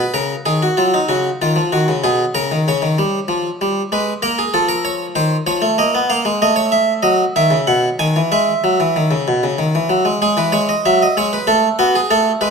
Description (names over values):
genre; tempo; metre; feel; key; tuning
classical, baroque-style two-part invention for harpsichord; 95 BPM; 3/4; straight; E major from 6.4 s; A4 = 441 Hz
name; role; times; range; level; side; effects
harpsichord; solo; 0.0-12.5 s; B2 to G#5; -14 LUFS; equal; none
room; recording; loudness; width
wet recital hall reverb, RT60 1.6 s; close, detailed microphones; -14 LUFS; side -5 dB against mid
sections
0.0-10.2 A section; 10.2-12.5 B section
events
none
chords
0.1 A#m/C#; 0.8 D#m; 2.0 G#m/B; 2.7 D#7/C#; 3.9 G#m; 4.5 F7; 5.8 A#5; 6.4 F#m/A; 7.7 B; 8.3 E; 11.5 Asus2